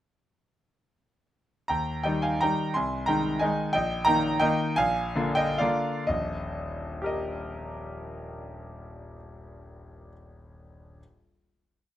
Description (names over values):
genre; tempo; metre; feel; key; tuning
classical, piano waltz; 117-191 BPM; 3/4; rubato; Eb major; A4 = 438 Hz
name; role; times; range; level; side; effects
bright concert grand piano; solo; 1.7-11.0 s; Eb1 to C6; -26 LUFS; equal; none
room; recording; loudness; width
light reverb; none; -24 LUFS; side -12 dB against mid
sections
1.7-6.1 A section; 6.1-8.8 final chord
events
slowing down 3.2-6.1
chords
1.7 Eb; 2.8 Ab/C; 3.7 Eb/Bb; 4.8 Bb7; 6.1 Eb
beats
| 1.70 2.05 2.41 | 2.75 3.08 3.42 | 3.75 4.07 4.42 | 4.78 5.15 5.59 | 6.08 6.54 7.00 | 7.46 7.91 8.38